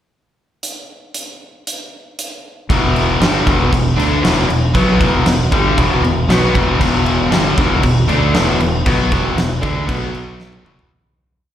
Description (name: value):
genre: hard rock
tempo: 117 BPM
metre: 4/4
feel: straight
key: unclear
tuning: A4 = 438 Hz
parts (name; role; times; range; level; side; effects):
- huge arena drum kit; drums; 0.6-10.9 s; crash cymbal, hi-hat, kick drum, snare drum, toms; -18 LUFS; equal; none
- biting overdriven guitar; riff; 2.7-10.9 s; E2 to D4; -15 LUFS; left 1 dB; none
- growling fingered electric bass; bass; 2.7-10.9 s; E1 to D2; -19 LUFS; equal; overdrive
room: light reverb, studio ambience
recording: live gig heard through the venue's PA, recital hall reverb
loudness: -12 LUFS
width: side -10 dB against mid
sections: 0.6-2.7 pickup bar; 2.7-10.9 riff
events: fade-out 8.9-10.9; drum fill 10.4-10.9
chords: 0.6 N.C.; 2.7 E5; 9.9 B5; 10.7 E5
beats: | 0.63 1.14 1.66 2.17 | 2.69 3.21 3.72 4.24 | 4.75 5.26 5.78 6.29 | 6.81 7.32 7.83 8.35 | 8.86 9.38 9.89 10.40